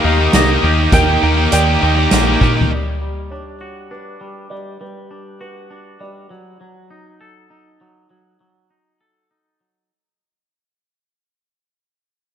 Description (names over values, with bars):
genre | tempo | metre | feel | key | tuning
post-rock | 100 BPM | 3/4 | straight | unclear | A4 = 440 Hz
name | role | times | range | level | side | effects
clean lap steel guitar | melody | 0.0-2.4 s | Eb5 to G5 | -20 LUFS | right 4 dB | slapback echo, digital delay
warm studio string section | sustained chords | 0.0-2.7 s | Eb4 to Eb6 | -26 LUFS | left 3 dB | none
felt-muted upright piano | arpeggios | 0.0-6.3 s | Bb4 to Eb5 | -30 LUFS | right 1 dB | slapback echo, digital delay
twangy electric guitar | arpeggios | 0.0-9.9 s | Eb3 to A4 | -26 LUFS | left 1 dB | slapback echo, digital delay
biting overdriven guitar | riff | 0.0-2.7 s | Eb3 to G4 | -20 LUFS | left 10 dB | none
tight distorted guitar | riff | 0.0-2.7 s | Eb3 to G4 | -20 LUFS | right 9 dB | distortion
deep dub picked electric bass | bass | 0.0-2.6 s | Bb1 to Bb2 | -16 LUFS | equal | none
soft-mallet drum kit | drums | 0.3-2.8 s | hi-hat, kick drum, snare drum, toms | -18 LUFS | equal | none
room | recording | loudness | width
moderate scoring stage reverb, RT60 1.9 s | big arena sound | -12 LUFS | side -9 dB against mid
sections
0.0-2.7 A section; 2.7-9.9 B section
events
drum fill 2.4; fade-out 2.7-9.9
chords
0.0 Eb; 2.7 Gmaj7; 6.3 F#m6